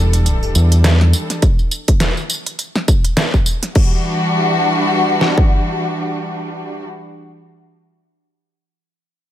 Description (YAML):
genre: glitch hop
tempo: 103 BPM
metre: 4/4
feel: swing 57% on 16ths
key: E minor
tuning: A4 = 444 Hz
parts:
  - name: rich studio string section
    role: sustained chords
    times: 0.0-6.8 s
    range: E3 to A4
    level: -18 LUFS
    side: left 1 dB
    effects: sidechain pumping
  - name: deep dub fingered electric bass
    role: bass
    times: 0.0-1.1 s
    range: E1 to E2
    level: -11 LUFS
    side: equal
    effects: none
  - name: dubstep drum kit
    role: drums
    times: 0.1-3.9 s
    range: crash cymbal, hi-hat, snare drum, tambourine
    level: -20 LUFS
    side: equal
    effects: none
  - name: dubstep drum kit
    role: drums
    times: 1.4-5.5 s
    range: kick drum, snare drum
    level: -13 LUFS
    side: equal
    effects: none
room: light reverb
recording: none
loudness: -13 LUFS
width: side -12 dB against mid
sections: 0.0-3.8 A section; 3.8-6.1 B section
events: drop 0.0-3.8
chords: 0.0 Em7; 3.8 Em9